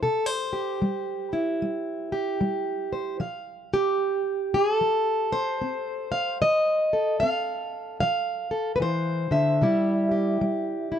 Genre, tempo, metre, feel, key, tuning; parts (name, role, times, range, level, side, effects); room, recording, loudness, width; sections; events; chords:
acoustic country blues, solo or duo; 75 BPM; 4/4; swing 62% on 8ths; A4 = 439 Hz
fingerpicked plugged-in steel-string acoustic guitar; solo; 0.0-11.0 s; C3 to F5; -23 LUFS; equal
little or no reverb; dry, close 1970s-style studio recording; -23 LUFS; side -9 dB against mid
0.0-11.0 A section
0.0 C; 3.2 F; 9.6 C